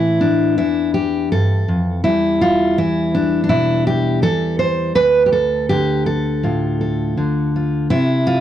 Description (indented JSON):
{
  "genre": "folk, solo fingerstyle acoustic guitar",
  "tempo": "82 BPM",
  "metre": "4/4",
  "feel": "straight",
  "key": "D dorian",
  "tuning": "A4 = 440 Hz",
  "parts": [
    { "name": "fingerpicked steel-string acoustic guitar", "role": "solo", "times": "0.0-8.4 s", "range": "D2 to C5", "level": "-14 LUFS", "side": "equal", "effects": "none" }
  ],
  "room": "studio ambience",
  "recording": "dry, close 1970s-style studio recording",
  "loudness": "-15 LUFS",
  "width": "side -11 dB against mid",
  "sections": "0.0-8.4 A section",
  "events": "none",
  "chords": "0.0 Am; 2.0 Em; 5.0 Dm; 7.9 C"
}